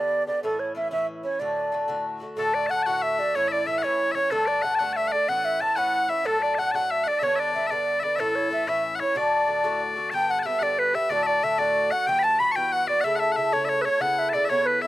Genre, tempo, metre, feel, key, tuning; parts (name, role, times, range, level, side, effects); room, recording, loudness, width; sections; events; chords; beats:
celtic folk; 124 BPM (dotted quarters); 6/8; straight; D major; A4 = 440 Hz
wooden flute; melody; 0.0-14.9 s; A4 to B5; -24 LUFS; right 2 dB
Irish bouzouki; accompaniment; 0.0-14.9 s; G2 to A4; -29 LUFS; left 3 dB
loud bright bagpipes; second line; 2.4-14.9 s; A4-23c to C#6; -26 LUFS; left 3 dB
little or no reverb; recorded outdoors, with no room sound; -22 LUFS; side -16 dB against mid
0.0-2.4 A section; 2.4-10.1 A section; 10.1-14.9 B section
0.4 A; 1.4 D; 3.3 A; 4.3 Gsus2; 5.3 A; 6.3 D; 7.2 G; 8.2 A; 9.2 D; 10.1 G; 11.1 D; 12.1 Emadd9/G; 13.0 A; 14.0 Aadd9
| 0.43 0.92 | 1.40 1.89 | 2.38 2.86 | 3.35 3.83 | 4.32 4.80 | 5.28 5.77 | 6.25 6.74 | 7.22 7.71 | 8.19 8.68 | 9.16 9.64 | 10.13 10.61 | 11.10 11.58 | 12.07 12.55 | 13.04 13.52 | 14.01 14.50